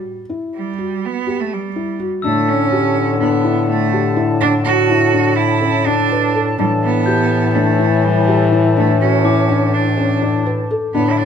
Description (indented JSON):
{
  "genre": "contemporary instrumental, chamber music in an uneven meter",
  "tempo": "248 BPM (eighths)",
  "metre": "9/8",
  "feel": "straight",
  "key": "A mixolydian",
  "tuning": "A4 = 440 Hz",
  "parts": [
    { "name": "felt-muted upright piano", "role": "arpeggios", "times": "0.0-11.2 s", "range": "C#4 to B4", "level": "-20 LUFS", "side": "left 4 dB", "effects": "none" },
    { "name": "bright cello", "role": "melody", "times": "0.5-11.2 s", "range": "G3 to F#4", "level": "-18 LUFS", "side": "right 9 dB", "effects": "none" },
    { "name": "mellow French horn", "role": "second line", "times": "2.2-11.2 s", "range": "D3 to E3", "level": "-20 LUFS", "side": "left 6 dB", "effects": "none" },
    { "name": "mellow woodwind section", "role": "sustained chords", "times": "2.2-11.2 s", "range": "A4 to B5", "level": "-26 LUFS", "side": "right 1 dB", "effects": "none" },
    { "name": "warm bass clarinet", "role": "bass", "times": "2.2-11.2 s", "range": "A2", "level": "-19 LUFS", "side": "left 1 dB", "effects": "none" },
    { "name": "glockenspiel with soft plastic mallets", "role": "texture", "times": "2.2-2.8, 7.1-9.8 s", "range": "D6 to G6", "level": "-28 LUFS", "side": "left 4 dB", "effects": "none" }
  ],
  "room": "moderate recital hall reverb, RT60 1.7 s",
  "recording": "close, detailed microphones",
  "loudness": "-13 LUFS",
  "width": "side -7 dB against mid",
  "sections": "0.0-2.2 A section; 2.2-11.2 B section",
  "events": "break 0.0-2.2",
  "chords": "0.0 A7(no3) (rootless); 2.2 A7sus4"
}